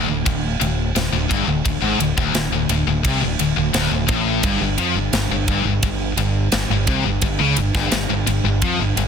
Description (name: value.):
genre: heavy metal.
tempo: 86 BPM.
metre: 4/4.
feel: straight.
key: D minor.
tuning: A4 = 445 Hz.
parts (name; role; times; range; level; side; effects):
heavy high-gain guitar; riff; 0.0-9.1 s; D2 to F3; -22 LUFS; left 12 dB; distortion.
sludgy distorted guitar; riff; 0.0-9.1 s; D2 to F3; -26 LUFS; right 9 dB; overdrive.
thick fuzz guitar; riff; 0.0-9.1 s; D2 to F3; -26 LUFS; equal; distortion.
growling fingered electric bass; bass; 0.0-9.1 s; D1 to F2; -23 LUFS; equal; overdrive.
tight metal drum kit; drums; 0.3-9.1 s; kick drum, ride cymbal, snare drum; -23 LUFS; right 1 dB; none.
room: light reverb.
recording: dense, heavily limited modern master.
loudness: -17 LUFS.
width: side -7 dB against mid.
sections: 0.0-9.1 A section.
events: none.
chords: 0.0 D5; 4.4 G5.